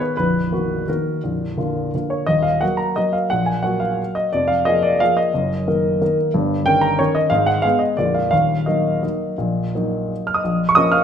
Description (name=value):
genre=classical, piano waltz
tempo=161-192 BPM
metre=3/4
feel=rubato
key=Eb minor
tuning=A4 = 441 Hz
part: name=warm baby grand piano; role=solo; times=0.0-11.0 s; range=Bb0 to F6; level=-16 LUFS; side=equal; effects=none
room=moderate recital hall reverb, RT60 1.4 s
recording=minimal, uncompressed stereo recording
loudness=-17 LUFS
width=side -8 dB against mid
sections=0.0-10.5 A section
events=none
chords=0.2 Ebm/Bb; 1.2 Bb; 2.3 Ebm; 4.3 Bb5/F; 5.3 Ebm/Gb; 6.3 Eb7/G; 7.3 Abm; 8.0 Bb7; 8.3 Ebm; 10.5 Bbm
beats=| 0.18 0.52 0.88 | 1.23 1.58 1.94 | 2.28 2.62 2.97 | 3.31 3.65 3.99 | 4.33 4.67 5.01 | 5.34 5.67 6.01 | 6.33 6.66 7.00 | 7.32 7.64 7.99 | 8.32 8.67 9.03 | 9.39 9.75 10.11 | 10.46 10.78